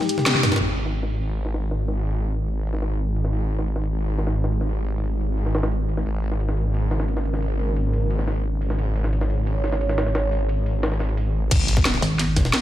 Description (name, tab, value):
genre	dark technical drum and bass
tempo	176 BPM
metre	4/4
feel	straight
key	unclear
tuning	A4 = 444 Hz
part	dark analog pad	sustained chords	0.0-11.5 s	G#3 to C#5	-30 LUFS	equal	chorus, phaser, sidechain pumping
part	drum and bass drum kit	drums	0.0-0.7, 11.5-12.6 s	crash cymbal, hi-hat, ride cymbal, snare drum, toms	-22 LUFS	equal	low-pass filter on hats, low-pass filter on cymbals, low-pass filter on snare, low-pass filter on toms
part	jungle sampler-style drum kit	drums	0.0-12.6 s	ride cymbal, snare drum	-30 LUFS	equal	high-pass filter on cymbals, low-pass filter on cymbals, high-pass filter on snare, low-pass filter on snare
part	snarling distorted saw bass	bass	0.6-12.0 s	G#1	-22 LUFS	equal	distortion, overdrive, sidechain pumping
part	electronic kick drum	drums	11.5-12.4 s	none	-19 LUFS	equal	none
part	impact	sound effects	11.5-12.6 s	none	-26 LUFS	equal	none
part	metallic wobble bass	bass	12.0-12.5 s	G#1	-22 LUFS	equal	chorus, tube saturation
room	light reverb, digital ambience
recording	none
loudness	-21 LUFS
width	side -13 dB against mid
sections	0.6-11.5 A section; 11.5-12.6 B section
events	break 0.0-0.6; drum fill 0.0-0.6; band accent 0.3; drop 11.5-12.6; impact 11.5-12.6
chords	0.0 G#5; 11.5 N.C.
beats	0.26 | 0.60 0.94 1.29 1.63 | 1.97 2.31 2.65 2.99 | 3.33 3.67 4.01 4.35 | 4.70 5.04 5.38 5.72 | 6.06 6.40 6.74 7.08 | 7.42 7.76 8.10 8.45 | 8.79 9.13 9.47 9.81 | 10.15 10.49 10.83 11.17 | 11.51 11.85 12.20 12.54